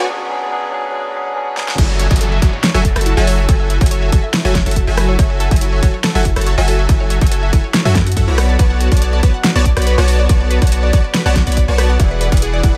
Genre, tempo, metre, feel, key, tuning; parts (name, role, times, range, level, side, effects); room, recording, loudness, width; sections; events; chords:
future bass; 141 BPM; 4/4; half-time; F# minor; A4 = 440 Hz
tine electric piano; accompaniment; 0.0-1.8 s; F#3 to G#4; -26 LUFS; equal; sidechain pumping, tape echo
ethereal airy pad; sustained chords; 0.1-12.8 s; B3 to D5; -33 LUFS; equal
supersaw stab; riff; 0.0-12.7 s; E3 to B5; -23 LUFS; equal; sidechain pumping, tape echo
riser and downlifter; sound effects; 0.0-5.2 s; -33 LUFS; equal
pop drum kit; drums; 1.6-12.7 s; crash cymbal, hi-hat, rim click, snare drum; -22 LUFS; equal; overdrive
unison pluck; arpeggios; 1.8-12.8 s; E4 to A5; -28 LUFS; equal; sidechain pumping, tape echo
long sustained 808-style bass; bass; 1.8-12.7 s; E1 to F#2; -18 LUFS; equal; sidechain pumping
electronic kick drum; drums; 1.8-12.7 s; -16 LUFS; equal; overdrive
little or no reverb; high-pass filter; -14 LUFS; mono
0.0-1.8 A section; 1.8-12.8 B section
build-up 0.0-1.8; break 0.1-1.8; drum fill 1.6; drop 1.8-12.8
0.0 E9 (rootless); 1.8 F#m7; 8.4 Bm7; 12.0 E9